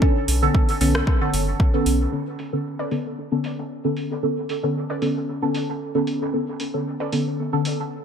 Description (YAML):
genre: dub techno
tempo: 114 BPM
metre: 4/4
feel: swing 54% on 16ths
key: B minor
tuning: A4 = 442 Hz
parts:
  - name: deep mellow chord stab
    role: stabs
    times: 0.0-7.7 s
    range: D3 to A4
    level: -22 LUFS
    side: equal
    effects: chorus, phaser, sidechain pumping, dub echo
  - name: electronic kick drum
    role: drums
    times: 0.0-1.7 s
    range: none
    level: -19 LUFS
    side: equal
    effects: overdrive
  - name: soft dub sub bass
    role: bass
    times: 0.3-2.1 s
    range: F#1 to B1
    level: -22 LUFS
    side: equal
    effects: sidechain pumping
  - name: deep house drum kit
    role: drums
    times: 0.3-7.8 s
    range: hi-hat, rim click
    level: -30 LUFS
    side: right 1 dB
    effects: overdrive, low-pass filter on hats, low-pass filter on snare, gated reverb
  - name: warbly dusty pluck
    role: riff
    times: 2.8-7.1 s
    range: C#4 to D5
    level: -35 LUFS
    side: right 2 dB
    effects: chorus, phaser, sidechain pumping, dub echo
room: light reverb, digital ambience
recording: bright 1980s-style digital production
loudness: -20 LUFS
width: side -7 dB against mid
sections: 0.0-2.1 A section; 2.1-8.0 B section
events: none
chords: 0.0 Bm9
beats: | 0.02 0.55 1.07 1.60 | 2.12 2.65 3.18 3.70 | 4.23 4.76 5.28 5.81 | 6.33 6.86 7.39